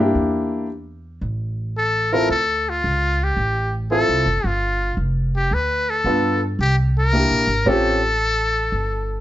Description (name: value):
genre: jazz, small-group swing and bop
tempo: 112 BPM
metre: 4/4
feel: swing 69% on 8ths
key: unclear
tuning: A4 = 440 Hz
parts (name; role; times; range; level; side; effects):
- clear baby grand piano; accompaniment; 0.0-8.0 s; Bb3 to A4; -20 LUFS; equal; none
- upright bass; bass; 0.0-9.2 s; F1 to G2; -23 LUFS; equal; none
- trumpet with metal mute; melody; 1.8-9.2 s; F4 to B4; -20 LUFS; left 1 dB; plate reverb
room: light reverb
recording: nothing above 7.7 kHz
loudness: -18 LUFS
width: side -14 dB against mid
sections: 0.0-9.2 A section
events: none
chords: 0.2 Em7b5; 1.2 Am; 2.3 Dm7; 4.4 G7; 6.6 C7; 7.6 A7alt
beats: | 0.16 0.69 1.23 1.76 | 2.30 2.83 3.37 3.90 | 4.44 4.97 5.51 6.04 | 6.58 7.11 7.65 8.18 | 8.72